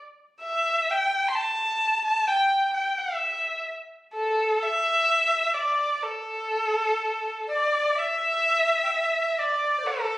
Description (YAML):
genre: chinese traditional, Chinese chamber ensemble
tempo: 64 BPM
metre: 4/4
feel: straight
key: unclear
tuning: A4 = 442 Hz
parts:
  - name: clear erhu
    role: melody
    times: 0.4-10.2 s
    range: A4 to C6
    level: -22 LUFS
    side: equal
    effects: none
  - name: breathy bright large dizi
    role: second line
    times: 7.5-10.2 s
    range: A4 to G5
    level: -27 LUFS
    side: left 1 dB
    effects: none
room: light reverb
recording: recorded on a phone in the room, studio reverb, compression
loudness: -22 LUFS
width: side -16 dB against mid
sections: 0.0-8.0 A section; 8.0-10.2 B section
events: none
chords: none